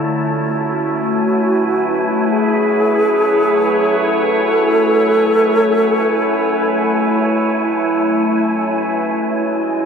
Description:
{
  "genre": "ambient",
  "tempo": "free time",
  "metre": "none",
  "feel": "none",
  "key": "unclear",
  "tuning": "A4 = 441 Hz",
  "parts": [
    { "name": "evolving wavetable pad", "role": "sustained chords", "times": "0.0-9.9 s", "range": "G#3 to G#5", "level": "-18 LUFS", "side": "left 1 dB", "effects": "chorus, built-in reverb" },
    { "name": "overtone-sweeping drone", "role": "drone", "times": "0.0-9.9 s", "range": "F#3 to C#4", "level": "-26 LUFS", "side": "right 2 dB", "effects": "chorus, built-in reverb, phaser" },
    { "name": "wind-like tuned noise texture", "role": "texture", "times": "0.0-9.9 s", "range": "A3 to A5", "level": "-21 LUFS", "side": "right 1 dB", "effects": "built-in reverb" },
    { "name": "mellow wooden-headed alto flute", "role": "melody", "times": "0.7-7.3 s", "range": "F#4 to A4", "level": "-16 LUFS", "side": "equal", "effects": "diffuse ambient delay" }
  ],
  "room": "wet cathedral reverb, RT60 5.7 s",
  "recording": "none",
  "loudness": "-13 LUFS",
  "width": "side -6 dB against mid",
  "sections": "0.0-9.9 A section",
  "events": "none",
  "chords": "0.1 Amaj7; 9.0 G#7(no3)",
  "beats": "free time"
}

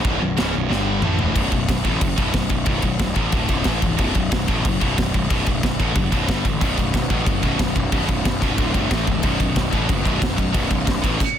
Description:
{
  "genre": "heavy metal",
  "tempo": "183 BPM",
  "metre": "4/4",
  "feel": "straight",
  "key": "B minor",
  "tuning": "A4 = 440 Hz",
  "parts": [
    { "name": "cranked stack guitar", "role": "riff", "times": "0.0-1.4, 6.6-11.2 s", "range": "B1 to A3", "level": "-28 LUFS", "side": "right 1 dB", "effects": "overdrive" },
    { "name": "heavy high-gain guitar", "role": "riff", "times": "0.0-11.2 s", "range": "B1 to A3", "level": "-26 LUFS", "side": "right 13 dB", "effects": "distortion" },
    { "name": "high-gain distorted guitar", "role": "riff", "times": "0.0-11.2 s", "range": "B1 to A3", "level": "-26 LUFS", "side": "left 12 dB", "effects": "distortion" },
    { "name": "fuzz picked electric bass", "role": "bass", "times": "0.0-11.2 s", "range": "B0 to A1", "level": "-24 LUFS", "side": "equal", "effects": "overdrive" },
    { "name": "big rock drum kit", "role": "drums", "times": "0.0-11.3 s", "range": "china cymbal, crash cymbal, kick drum, snare drum, toms", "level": "-22 LUFS", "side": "equal", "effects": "none" }
  ],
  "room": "small room reverb",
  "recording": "dense, heavily limited modern master",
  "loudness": "-18 LUFS",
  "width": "side -9 dB against mid",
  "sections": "0.0-1.4 A section; 1.4-11.4 B section",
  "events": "drum fill 0.7-1.4",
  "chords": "0.0 B5; 0.7 G5; 1.0 Esus4; 1.4 B5; 3.3 D5; 3.7 A5; 4.0 B5; 6.3 G5; 6.6 B5; 8.6 D5; 8.9 A5; 9.2 B5",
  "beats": "| 0.05 0.38 0.70 1.03 | 1.36 1.69 2.02 2.35 | 2.68 3.00 3.33 3.66 | 3.99 4.32 4.65 4.98 | 5.30 5.63 5.96 6.29 | 6.62 6.94 7.27 7.60 | 7.93 8.26 8.58 8.91 | 9.24 9.57 9.89 10.22 | 10.55 10.88 11.21"
}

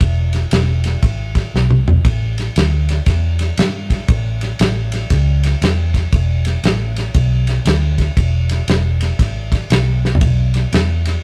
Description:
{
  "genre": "electric blues shuffle",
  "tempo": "118 BPM",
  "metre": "4/4",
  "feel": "swing 64% on 8ths",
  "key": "E mixolydian",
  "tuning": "A4 = 445 Hz",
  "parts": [
    { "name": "vintage muted fingered electric bass", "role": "bass", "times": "0.0-11.2 s", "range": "E1 to G2", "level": "-19 LUFS", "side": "equal", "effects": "none" },
    { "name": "warm soul drum kit", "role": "drums", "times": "0.0-11.1 s", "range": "kick drum, ride cymbal, snare drum, toms", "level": "-20 LUFS", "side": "equal", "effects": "none" }
  ],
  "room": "moderate stone room reverb, RT60 1.0 s",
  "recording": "rough rehearsal-room recording, tube saturation",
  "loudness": "-16 LUFS",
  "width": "mono",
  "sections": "0.0-11.2 A section",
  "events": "drum fill 1.5-2.0, 10.0",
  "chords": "none",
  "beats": "| 0.01 0.52 1.03 1.54 | 2.05 2.56 3.07 3.58 | 4.09 4.60 5.11 5.62 | 6.13 6.64 7.15 7.66 | 8.17 8.68 9.19 9.70 | 10.21 10.72"
}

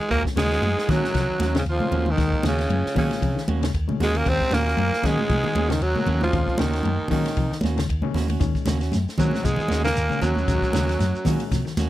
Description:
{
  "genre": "afrobeat",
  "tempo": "116 BPM",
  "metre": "4/4",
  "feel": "swing 55% on 16ths",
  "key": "Eb dorian",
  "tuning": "A4 = 440 Hz",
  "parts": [
    { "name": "growling tenor saxophone", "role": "melody", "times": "0.0-11.7 s", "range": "Db3 to C4", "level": "-25 LUFS", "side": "right 2 dB", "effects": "none" },
    { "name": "raspy baritone saxophone", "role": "second line", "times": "0.0-11.7 s", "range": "Db2 to C3", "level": "-35 LUFS", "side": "left 7 dB", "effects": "none" },
    { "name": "raspy tenor saxophone", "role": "second line", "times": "0.0-11.7 s", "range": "Db4 to C5", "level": "-34 LUFS", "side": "right 2 dB", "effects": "none" },
    { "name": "overdriven reed electric piano", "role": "accompaniment", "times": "0.1-11.5 s", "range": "Bb2 to Db4", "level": "-32 LUFS", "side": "left 10 dB", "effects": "none" },
    { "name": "semi-hollow electric guitar", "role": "arpeggios", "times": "0.1-11.8 s", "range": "Bb2 to Gb3", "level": "-31 LUFS", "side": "left 6 dB", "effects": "analog chorus" },
    { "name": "electric guitar at the edge of break-up", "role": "stabs", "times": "0.1-11.9 s", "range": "Bb3 to Gb4", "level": "-29 LUFS", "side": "right 6 dB", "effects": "none" },
    { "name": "hollow-body short-scale picked electric bass", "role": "bass", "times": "0.1-11.9 s", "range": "Eb2 to Eb3", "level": "-25 LUFS", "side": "equal", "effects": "none" },
    { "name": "compact cocktail drum kit", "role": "drums", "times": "0.1-11.9 s", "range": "hi-hat, kick drum, ride cymbal, snare drum", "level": "-28 LUFS", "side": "equal", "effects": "none" },
    { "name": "congas", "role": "percussion", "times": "0.4-11.9 s", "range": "none", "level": "-29 LUFS", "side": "right 1 dB", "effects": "none" },
    { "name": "shekere", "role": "percussion", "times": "8.4-11.9 s", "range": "none", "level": "-33 LUFS", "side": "right 2 dB", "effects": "none" }
  ],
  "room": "little or no reverb",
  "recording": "dry, close 1970s-style studio recording",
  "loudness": "-20 LUFS",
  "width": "side -14 dB against mid",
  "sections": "0.1-11.9 A section",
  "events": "none",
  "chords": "0.1 Ebm7",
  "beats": "| 0.11 0.63 1.15 1.66 | 2.18 2.70 3.22 3.74 | 4.26 4.78 5.30 5.82 | 6.33 6.85 7.37 7.89 | 8.41 8.93 9.44 9.96 | 10.48 10.99 11.51"
}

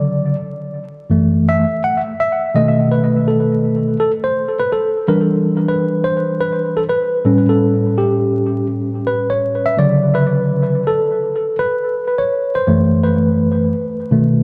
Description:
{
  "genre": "hip hop",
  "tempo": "83 BPM",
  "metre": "4/4",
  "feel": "swing 65% on 16ths",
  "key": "E minor",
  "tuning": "A4 = 441 Hz",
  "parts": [
    { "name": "tine electric piano", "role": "solo", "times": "0.0-14.4 s", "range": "F#2 to F#5", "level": "-16 LUFS", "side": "equal", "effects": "overdrive, analog delay" }
  ],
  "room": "moderate echo chamber reverb, RT60 2.4 s",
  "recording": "echo-heavy mix, vinyl crackle",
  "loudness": "-16 LUFS",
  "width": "mono",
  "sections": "0.0-4.0 A section; 4.0-14.4 A section",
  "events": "tine electric piano solo 0.0-4.0, 4.0-14.4",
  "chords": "0.0 Dmaj7; 1.1 F#m7; 2.6 B7; 4.0 Em7; 6.9 A7; 9.8 Dmaj7; 12.7 Am69/F#",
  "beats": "0.39 | 1.11 1.83 2.56 3.28 | 4.00 4.73 5.45 6.17 | 6.89 7.62 8.34 9.06 | 9.79 10.51 11.23 11.96 | 12.68 13.40 14.12"
}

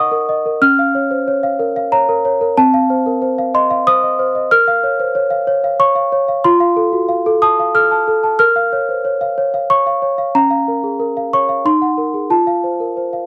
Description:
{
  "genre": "classical, lullaby for celesta",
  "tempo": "92 BPM",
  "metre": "3/4",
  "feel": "straight",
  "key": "Bb minor",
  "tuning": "A4 = 438 Hz",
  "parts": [
    { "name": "celesta", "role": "solo", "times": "0.0-13.3 s", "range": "C4 to F6", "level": "-15 LUFS", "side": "equal", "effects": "none" }
  ],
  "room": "light reverb",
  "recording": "dry, close 1970s-style studio recording",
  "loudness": "-15 LUFS",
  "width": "mono",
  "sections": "0.0-13.3 A section",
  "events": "none",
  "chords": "0.0 Ebm; 0.6 Bbm/Db; 2.6 F7/C; 4.5 Bbm; 6.5 F; 8.4 Bbm; 10.3 Bbm/Db; 11.7 Cm7b5/Eb; 12.3 F",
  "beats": "| 0.61 1.26 1.91 | 2.56 3.21 3.86 | 4.51 5.16 5.80 | 6.45 7.10 7.75 | 8.40 9.05 9.70 | 10.35 11.00 11.65 | 12.31 12.97"
}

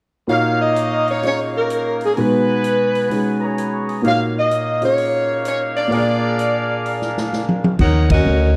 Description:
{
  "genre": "jazz, big band swing",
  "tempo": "128 BPM",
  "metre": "4/4",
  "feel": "swing 66% on 8ths",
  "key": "Eb minor",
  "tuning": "A4 = 440 Hz",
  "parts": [
    { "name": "warm saxophone section", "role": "melody", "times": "0.3-8.6 s", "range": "Db4 to Gb5", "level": "-21 LUFS", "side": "equal", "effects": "none" },
    { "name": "warm grand piano", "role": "accompaniment", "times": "0.3-7.8 s", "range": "Bb2 to Eb5", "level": "-24 LUFS", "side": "equal", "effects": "none" },
    { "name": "clear trumpet section", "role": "stabs", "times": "0.3-7.8 s", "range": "Bb3 to Eb6", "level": "-27 LUFS", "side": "equal", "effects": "none" },
    { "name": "swinging big-band drum kit", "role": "drums", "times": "0.3-8.2 s", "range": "crash cymbal, hi-hat, kick drum, ride cymbal, snare drum, toms", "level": "-23 LUFS", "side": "equal", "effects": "none" },
    { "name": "upright bass", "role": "bass", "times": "7.8-8.6 s", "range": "D2 to Eb2", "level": "-17 LUFS", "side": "equal", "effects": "none" }
  ],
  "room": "light reverb",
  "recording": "dark, warm production",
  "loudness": "-18 LUFS",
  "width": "mono",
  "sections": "0.3-7.8 A section",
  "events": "drum fill 7.3-7.8; band accent 8.0",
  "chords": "0.3 Ebm9/Bb; 2.2 Abm9; 4.0 Ebm9/Bb; 5.9 Bb7; 7.8 Ebm7",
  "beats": "| 0.28 0.75 1.22 1.69 | 2.16 2.63 3.10 3.57 | 4.04 4.51 4.98 5.45 | 5.92 6.39 6.86 7.33 | 7.80 8.27"
}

